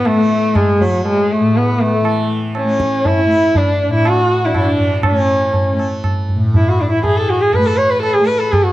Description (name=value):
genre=indian classical, Hindustani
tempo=120 BPM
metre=4/4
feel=straight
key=A raga bilaval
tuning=A4 = 437 Hz
part: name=warm sarangi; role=melody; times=0.0-8.7 s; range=F#3 to C#5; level=-14 LUFS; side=equal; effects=none
part: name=hand-pumped harmonium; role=second line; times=0.0-8.7 s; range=F#3 to B4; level=-24 LUFS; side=left 3 dB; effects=none
part: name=tanpura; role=drone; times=0.0-8.7 s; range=A2 to A3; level=-21 LUFS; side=equal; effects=none
part: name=tabla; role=percussion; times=0.1-8.7 s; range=none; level=-18 LUFS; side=right 1 dB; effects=none
room=moderate studio reverb, RT60 0.5 s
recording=dark, warm production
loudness=-12 LUFS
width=side -15 dB against mid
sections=0.0-8.7 A section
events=none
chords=none